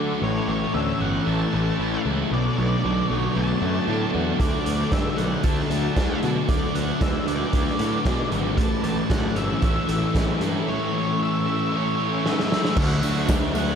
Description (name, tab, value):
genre	rock, shoegaze and dream pop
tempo	115 BPM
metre	4/4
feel	straight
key	D major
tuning	A4 = 438 Hz
part	string machine, violas	sustained chords	0.0-13.8 s	D3 to B4	-30 LUFS	equal	ensemble chorus
part	overdriven electric guitar	riff	0.0-13.8 s	A2 to F#4	-29 LUFS	right 8 dB	reverse reverb
part	thick fuzz guitar	riff	0.0-13.8 s	A2 to F#4	-27 LUFS	left 7 dB	distortion, wide subtle chorus
part	fuzz picked electric bass	bass	0.0-13.8 s	G1 to D3	-27 LUFS	right 1 dB	overdrive
part	octave-fuzz lead guitar	melody	0.2-13.8 s	C#5 to A5	-30 LUFS	right 1 dB	distortion, ping-pong delay
part	raw garage drum kit	drums	4.4-13.7 s	crash cymbal, hi-hat, kick drum, snare drum	-25 LUFS	right 1 dB	none
part	tambourine	percussion	12.9-13.7 s	none	-43 LUFS	left 15 dB	none
room	wet huge ambient reverb, RT60 7.1 s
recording	dreamy mix soaked in reverb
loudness	-20 LUFS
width	side -7 dB against mid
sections	0.0-12.8 A section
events	drum fill 12.2-12.8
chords	0.2 A; 2.3 Bm7; 4.4 D; 8.6 A; 12.8 D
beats	| 0.22 0.74 1.26 1.78 | 2.31 2.83 3.35 3.88 | 4.40 4.92 5.44 5.96 | 6.49 7.01 7.53 8.05 | 8.58 9.10 9.62 10.15 | 10.67 11.19 11.71 12.24 | 12.76 13.28